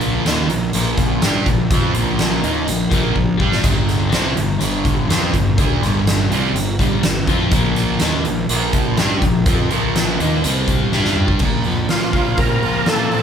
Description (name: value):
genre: classic rock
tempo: 124 BPM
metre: 4/4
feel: straight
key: unclear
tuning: A4 = 440 Hz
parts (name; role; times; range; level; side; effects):
- overdriven semi-hollow guitar; riff; 0.0-13.2 s; G2 to G4; -22 LUFS; left 8 dB; phaser
- sludgy distorted guitar; riff; 0.0-13.2 s; G2 to G4; -20 LUFS; right 6 dB; overdrive
- fuzz fingered electric bass; bass; 0.0-13.2 s; G1 to Bb2; -23 LUFS; equal; overdrive
- huge arena drum kit; drums; 0.0-13.2 s; crash cymbal, hi-hat, kick drum, snare drum, splash cymbal, toms; -19 LUFS; equal; none
- overdriven tonewheel organ; melody; 11.9-13.2 s; F4 to Bb4; -20 LUFS; right 2 dB; slow rotary speaker, chorus vibrato
room: moderate large studio reverb, RT60 1.3 s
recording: band playing live in one room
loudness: -15 LUFS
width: side -8 dB against mid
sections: 0.0-11.4 A section; 11.4-13.2 B section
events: drum fill 3.2-3.6, 10.9-11.4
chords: 0.0 Bb5; 3.6 G5; 7.5 Bb5; 10.4 C5; 10.9 G5; 11.4 Bbsus2